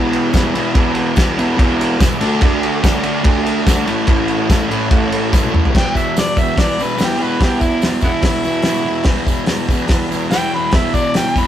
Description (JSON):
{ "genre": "garage rock duo or trio", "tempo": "144 BPM", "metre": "4/4", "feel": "straight", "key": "E mixolydian", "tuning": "A4 = 440 Hz", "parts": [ { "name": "overdriven combo organ", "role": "sustained chords", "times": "0.0-11.5 s", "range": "E4 to F#5", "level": "-28 LUFS", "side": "equal", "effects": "none" }, { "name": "fuzz guitar", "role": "riff", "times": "0.0-11.5 s", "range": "E2 to D4", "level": "-17 LUFS", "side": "equal", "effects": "distortion" }, { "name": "cloth-damped thuddy drum kit", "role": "drums", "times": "0.1-11.5 s", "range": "crash cymbal, hi-hat, kick drum, ride cymbal, snare drum, toms", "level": "-16 LUFS", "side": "equal", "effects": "none" }, { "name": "tambourine", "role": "percussion", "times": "0.3-11.5 s", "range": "none", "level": "-33 LUFS", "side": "right 3 dB", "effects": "none" }, { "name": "overdriven harmonica", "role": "melody", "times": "5.8-11.5 s", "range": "G#3 to B5", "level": "-19 LUFS", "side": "right 1 dB", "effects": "none" } ], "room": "light reverb", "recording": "rough rehearsal-room recording", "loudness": "-13 LUFS", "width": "side -11 dB against mid", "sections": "0.0-5.7 A section; 5.7-11.5 B section", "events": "drum fill 5.3-5.7; harmonica solo 5.7-11.5", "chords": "0.0 E; 2.2 D; 3.9 A; 5.7 E", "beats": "0.34 | 0.75 1.17 1.59 2.01 | 2.42 2.84 3.25 3.67 | 4.09 4.50 4.92 5.33 | 5.75 6.16 6.58 6.99 | 7.41 7.82 8.24 8.65 | 9.07 9.48 9.90 10.32 | 10.73 11.15" }